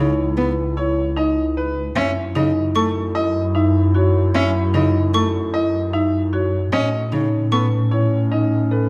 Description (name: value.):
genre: classical, minimalist pattern music.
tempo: 151 BPM.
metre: 6/4.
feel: straight.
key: unclear.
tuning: A4 = 444 Hz.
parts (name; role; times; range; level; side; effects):
bright grand piano; melody; 0.0-8.9 s; A4 to E5; -28 LUFS; equal; none.
dark clarinet; second line; 0.0-8.9 s; C#4 to E4; -28 LUFS; equal; none.
warm cello; accompaniment; 0.0-7.7 s; C#3 to C#4; -26 LUFS; equal; none.
marimba with medium hard mallets; arpeggios; 0.0-8.9 s; D#4 to B4; -25 LUFS; equal; none.
rich studio double bass section; bass; 0.0-8.9 s; C#2 to A2; -23 LUFS; equal; none.
xylophone with wooden mallets; arpeggios; 2.8-7.8 s; C#6; -26 LUFS; equal; none.
room: light reverb.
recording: dark, warm production.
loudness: -19 LUFS.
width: mono.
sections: 0.0-8.9 A section.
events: none.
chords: 0.0 C#m7; 2.0 F#m7; 6.7 Aadd9.